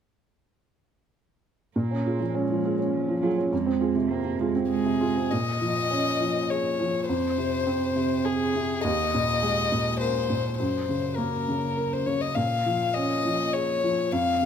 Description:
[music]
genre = neoclassical piano and strings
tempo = 102 BPM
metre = 3/4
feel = rubato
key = Bb minor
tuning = A4 = 439 Hz
[part]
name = dark cello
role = second line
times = 1.8-5.1 s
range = F3 to Bb3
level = -31 LUFS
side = right 11 dB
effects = none
[part]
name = felt-muted upright piano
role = accompaniment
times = 1.8-14.5 s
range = Eb2 to Bb4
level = -25 LUFS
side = right 1 dB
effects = none
[part]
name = warm violin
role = melody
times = 4.7-14.5 s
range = Ab4 to F5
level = -26 LUFS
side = left 5 dB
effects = none
[sound]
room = moderate recital hall reverb, RT60 1.6 s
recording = none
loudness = -23 LUFS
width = side -8 dB against mid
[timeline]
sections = 1.8-5.3 A section; 5.3-14.5 B section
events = none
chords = 1.8 Bbm7; 3.5 Fm; 5.3 Bbm7; 7.1 Fm; 8.8 Ebsus4; 10.6 Gb; 12.4 Bbm7

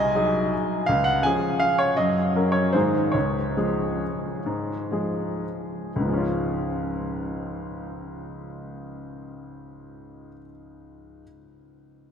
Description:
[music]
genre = classical, piano waltz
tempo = 111-170 BPM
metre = 3/4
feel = rubato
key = Db major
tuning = A4 = 439 Hz
[part]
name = bright grand piano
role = solo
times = 0.0-11.2 s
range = C2 to Ab5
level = -23 LUFS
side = equal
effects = none
[sound]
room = wet cathedral reverb, RT60 6.4 s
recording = in a vast, echoing space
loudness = -22 LUFS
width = side -7 dB against mid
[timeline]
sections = 0.0-6.0 A section; 6.0-9.1 B section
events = slowing down 2.5-6.0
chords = 0.0 Ab7/C; 0.9 Db; 2.0 Gb; 2.7 Ab; 3.1 Db

